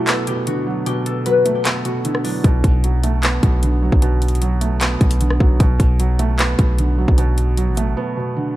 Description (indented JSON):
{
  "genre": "hip hop, trap",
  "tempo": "152 BPM",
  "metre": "4/4",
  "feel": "half-time",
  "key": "B minor",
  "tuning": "A4 = 440 Hz",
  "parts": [
    { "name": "concert harp", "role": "melody", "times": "0.0-5.0 s", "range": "D4 to B4", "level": "-22 LUFS", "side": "left 4 dB", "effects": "none" },
    { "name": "felt-muted upright piano", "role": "accompaniment", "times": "0.0-8.6 s", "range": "B2 to B3", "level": "-21 LUFS", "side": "right 2 dB", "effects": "none" },
    { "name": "trap drum kit", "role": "drums", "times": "0.1-7.9 s", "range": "handclaps, hi-hat, kick drum, rim click", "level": "-18 LUFS", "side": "equal", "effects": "none" },
    { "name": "hard-hitting 808-style bass", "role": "bass", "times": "2.4-8.0 s", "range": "A1 to B1", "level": "-17 LUFS", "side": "equal", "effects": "none" }
  ],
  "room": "little or no reverb",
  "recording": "dark, warm production",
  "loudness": "-15 LUFS",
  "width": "side -15 dB against mid",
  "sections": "0.0-8.6 A section",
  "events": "break 0.0-2.4, 8.0-8.6",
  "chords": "0.0 Bm7"
}